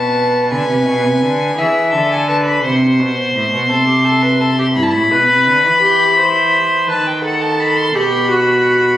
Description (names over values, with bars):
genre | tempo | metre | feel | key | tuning
classical, baroque-style fugue for string quartet | 56 BPM (dotted quarters) | 12/8 | straight | unclear | A4 = 440 Hz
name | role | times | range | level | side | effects
rich violin | melody | 0.0-9.0 s | E5 to C6 | -15 LUFS | left 3 dB | none
warm violin | second line | 0.0-4.7 s | G4 to C5 | -19 LUFS | equal | none
rich cello | bass | 0.0-9.0 s | G2 to E3 | -17 LUFS | right 1 dB | none
warm viola | accompaniment | 4.8-9.0 s | E4 to C5 | -15 LUFS | right 2 dB | none
room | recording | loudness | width
moderate scoring stage reverb, RT60 1.6 s | recorded on a phone in the room, club reverb | -11 LUFS | side -12 dB against mid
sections
0.0-9.0 A section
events
none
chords
0.0 E7; 2.6 Am; 4.8 Em/G; 6.9 B/D#